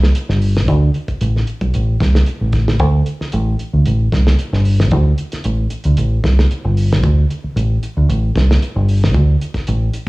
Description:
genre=afrobeat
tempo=114 BPM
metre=4/4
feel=straight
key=unclear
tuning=A4 = 440 Hz
part: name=deep dub fingered electric bass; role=bass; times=0.0-10.1 s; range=G1 to D2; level=-13 LUFS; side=equal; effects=none
part: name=damped 70s drum kit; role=drums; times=0.0-10.1 s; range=hi-hat, kick drum, snare drum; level=-21 LUFS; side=equal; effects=cassette tape
room=little or no reverb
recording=home recording on cassette, studio reverb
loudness=-13 LUFS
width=side -21 dB against mid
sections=0.0-10.1 A section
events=none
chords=none

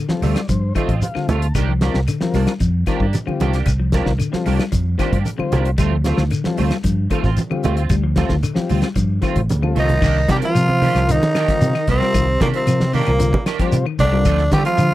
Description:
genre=afrobeat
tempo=113 BPM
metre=4/4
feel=straight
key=C dorian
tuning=A4 = 440 Hz
part: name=semi-hollow electric guitar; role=arpeggios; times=0.0-14.9 s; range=D3 to G3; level=-25 LUFS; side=left 5 dB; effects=spring reverb
part: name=combo organ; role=accompaniment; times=0.1-14.9 s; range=G3 to A5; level=-25 LUFS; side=left 4 dB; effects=none
part: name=fingered electric bass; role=bass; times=0.1-14.9 s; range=A1 to D3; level=-19 LUFS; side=equal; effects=none
part: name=damped 70s drum kit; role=drums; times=0.1-14.9 s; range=crash cymbal, hi-hat, kick drum, snare drum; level=-23 LUFS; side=equal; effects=none
part: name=congas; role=percussion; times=0.1-14.9 s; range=none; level=-25 LUFS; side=right 3 dB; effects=none
part: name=clean electric guitar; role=stabs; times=0.2-14.7 s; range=Eb3 to G4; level=-26 LUFS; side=right 9 dB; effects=ensemble chorus
part: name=shekere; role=percussion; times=0.2-14.9 s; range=none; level=-24 LUFS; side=left 1 dB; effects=none
part: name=claves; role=percussion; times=0.4-14.9 s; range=none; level=-36 LUFS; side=left 15 dB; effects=none
part: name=growling tenor saxophone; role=melody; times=9.8-14.9 s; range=Bb3 to G4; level=-20 LUFS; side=equal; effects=none
part: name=breathy trombone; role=second line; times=9.8-14.9 s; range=Bb2 to G3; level=-28 LUFS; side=right 4 dB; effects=none
part: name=bright trombone section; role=second line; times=9.8-14.9 s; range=Bb2 to G3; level=-27 LUFS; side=right 5 dB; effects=none
room=little or no reverb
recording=dry, close 1970s-style studio recording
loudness=-15 LUFS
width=side -15 dB against mid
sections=0.0-10.0 A section; 10.0-14.9 B section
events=transistor combo organ fill 0.0-1.6; drum fill 9.5-10.0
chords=0.0 Dm7; 1.6 Cm9; 5.8 Dm7; 10.0 Cm9; 14.3 Dm7

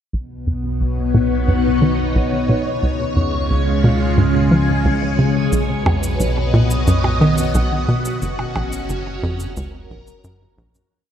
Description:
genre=ambient, sequencer-driven space music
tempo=89 BPM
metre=4/4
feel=straight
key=B lydian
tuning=A4 = 441 Hz
part: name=phased string machine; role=sustained chords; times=0.1-10.9 s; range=B2 to G#5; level=-19 LUFS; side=left 1 dB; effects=ensemble chorus, phaser
part: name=tight sequencer bass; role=riff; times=0.1-10.8 s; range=F#1 to E#3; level=-19 LUFS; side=equal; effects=tape echo
part: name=warm sub bass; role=bass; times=0.1-10.9 s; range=F#1 to C#2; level=-24 LUFS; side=equal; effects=none
part: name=cabasa and percussion blips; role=percussion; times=5.5-10.9 s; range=none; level=-29 LUFS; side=right 2 dB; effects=tape echo
room=wet cathedral reverb, RT60 5.5 s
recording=in a vast, echoing space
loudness=-15 LUFS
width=side -9 dB against mid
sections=0.1-10.9 A section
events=filter sweep on analog synth bass 0.1-10.9; fade-out 7.3-10.9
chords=0.1 Badd9; 2.8 C#; 5.5 Badd9; 8.2 F#

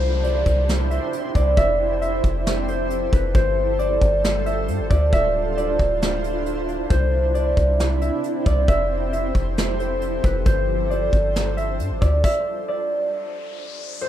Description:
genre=hip hop, atmospheric cloud-rap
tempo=135 BPM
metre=4/4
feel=half-time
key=C major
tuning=A4 = 440 Hz
part: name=concert harp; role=melody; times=0.0-14.1 s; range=B4 to E5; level=-23 LUFS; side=equal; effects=low-pass filter, tape echo
part: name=shimmering ambient pad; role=sustained chords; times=0.0-14.1 s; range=C3 to C5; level=-27 LUFS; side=right 2 dB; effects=chorus, built-in reverb, sidechain pumping
part: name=soft 808-style bass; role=bass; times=0.0-12.2 s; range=D1 to G2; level=-22 LUFS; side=equal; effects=none
part: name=downlifter and riser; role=sound effects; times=0.0-3.3, 12.8-14.1 s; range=none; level=-36 LUFS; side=left 1 dB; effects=none
part: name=soft brush drum kit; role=drums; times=0.2-12.3 s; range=crash cymbal, hi-hat, kick drum, snare drum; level=-22 LUFS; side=equal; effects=none
room=moderate small room reverb, RT60 0.5 s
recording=rough home demo mix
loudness=-18 LUFS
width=side -11 dB against mid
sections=0.0-14.0 A section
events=stop 12.2-14.0; riser 12.8-14.0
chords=0.0 Cadd9; 1.6 Fmaj9; 3.3 G7sus4; 5.1 Dm7; 6.9 Cadd9; 8.7 Fmaj9; 10.5 G7sus4; 12.2 N.C.

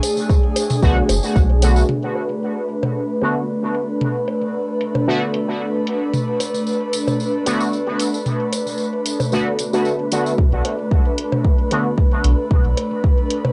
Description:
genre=dub techno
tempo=113 BPM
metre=4/4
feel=swing 54% on 16ths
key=B dorian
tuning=A4 = 437 Hz
part: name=airy breathy pad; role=sustained chords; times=0.0-13.5 s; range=A3 to B4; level=-24 LUFS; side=equal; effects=chorus, sidechain pumping, cassette tape
part: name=electronic hi-hat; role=drums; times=0.0-13.4 s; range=none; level=-31 LUFS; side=equal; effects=low-pass filter on hats, cassette tape, low-pass filter on room
part: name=electronic woodblock and toms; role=percussion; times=0.0-13.5 s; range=none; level=-28 LUFS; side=equal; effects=sidechain pumping on toms, cassette tape, sidechain pumping on perc, dub echo
part: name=tambourine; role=percussion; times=0.0-1.9, 6.1-10.4 s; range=none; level=-32 LUFS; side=equal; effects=none
part: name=electronic kick drum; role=drums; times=0.3-1.5, 10.4-13.2 s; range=none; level=-18 LUFS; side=equal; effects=cassette tape
part: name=resonant sweep polysynth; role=stabs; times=0.8-11.8 s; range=D3 to F#4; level=-26 LUFS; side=equal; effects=chorus, phaser, vintage 12-bit sampler grit, cassette tape, dub echo
part: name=pure sine sub bass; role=bass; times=0.8-1.8, 10.5-12.7 s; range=F#1 to B1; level=-19 LUFS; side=equal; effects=tube saturation, sidechain pumping
room=light reverb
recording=home recording on cassette, nothing above 10.7 kHz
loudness=-19 LUFS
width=mono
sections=0.0-1.9 A section; 1.9-10.4 B section; 10.4-13.5 A section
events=filter sweep on drum 1.9-10.4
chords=0.0 Bm7

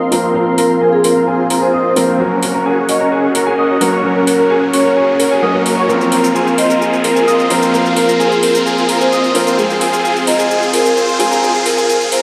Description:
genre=EDM, festival progressive house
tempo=130 BPM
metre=4/4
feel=straight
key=Bb minor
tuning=A4 = 439 Hz
part: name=felt-muted upright piano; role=accompaniment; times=0.0-12.2 s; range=F3 to Bb4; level=-21 LUFS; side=equal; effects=diffuse ambient delay
part: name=supersaw pad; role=sustained chords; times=0.0-12.2 s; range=Ab4 to Db6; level=-25 LUFS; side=equal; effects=phaser, low-pass filter
part: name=clear grand piano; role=arpeggios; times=0.0-12.2 s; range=Ab5 to Eb6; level=-23 LUFS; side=equal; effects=low-pass filter, diffuse ambient delay
part: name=supersaw chords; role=riff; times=0.0-12.2 s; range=C4 to Eb5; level=-19 LUFS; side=equal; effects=low-pass filter, diffuse ambient delay
part: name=saturated sub bass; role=bass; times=0.0-12.2 s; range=F1 to Gb2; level=-35 LUFS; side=equal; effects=none
part: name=riser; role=sound effects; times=1.3-12.2 s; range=none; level=-26 LUFS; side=equal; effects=none
part: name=electronic hi-hat and shaker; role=drums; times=0.1-12.2 s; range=none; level=-25 LUFS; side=equal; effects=high-pass filter on hats, high-pass filter on perc
part: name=vibraphone with soft mallets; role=melody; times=0.6-12.2 s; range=Ab4 to Eb5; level=-19 LUFS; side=equal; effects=diffuse ambient delay
room=wet plate reverb, RT60 2.1 s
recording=dreamy mix soaked in reverb, high-pass filter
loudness=-13 LUFS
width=mono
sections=0.0-12.2 A section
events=build-up 0.0-12.2; filter sweep on supersaw synth 0.0-12.2; filter sweep on grand piano 0.0-12.2; filter sweep 0.0-12.2; riser 1.3-12.2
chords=0.0 Bbsus2; 2.2 Gb; 5.9 Bbsus2; 9.6 Fm

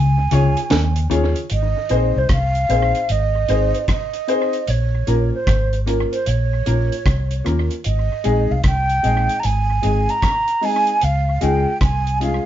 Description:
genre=roots reggae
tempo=76 BPM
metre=4/4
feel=swing 64% on 16ths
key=Ab major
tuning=A4 = 440 Hz
part: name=mellow hollow concert flute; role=melody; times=0.0-12.5 s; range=C5 to Bb5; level=-21 LUFS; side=right 3 dB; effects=none
part: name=mellow electric guitar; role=riff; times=0.0-1.3 s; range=Db3 to Eb3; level=-22 LUFS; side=left 4 dB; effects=tape echo
part: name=vintage muted fingered electric bass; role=bass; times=0.0-12.4 s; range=Ab1 to Eb2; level=-19 LUFS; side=equal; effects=none
part: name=dark upright piano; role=stabs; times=0.3-12.5 s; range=Ab3 to Db5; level=-21 LUFS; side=left 3 dB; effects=none
part: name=deep reggae drum kit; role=drums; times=0.3-12.4 s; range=hi-hat, kick drum, rim click, snare drum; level=-22 LUFS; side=equal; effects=tape echo
room=moderate studio reverb, RT60 0.5 s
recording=band playing live in one room, nothing above 7.5 kHz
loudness=-16 LUFS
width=side -11 dB against mid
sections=0.0-1.5 A section; 1.5-12.5 B section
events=break 0.0-1.5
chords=0.0 Db; 1.5 Ab; 4.7 Bbm; 7.8 Ab; 11.0 Db

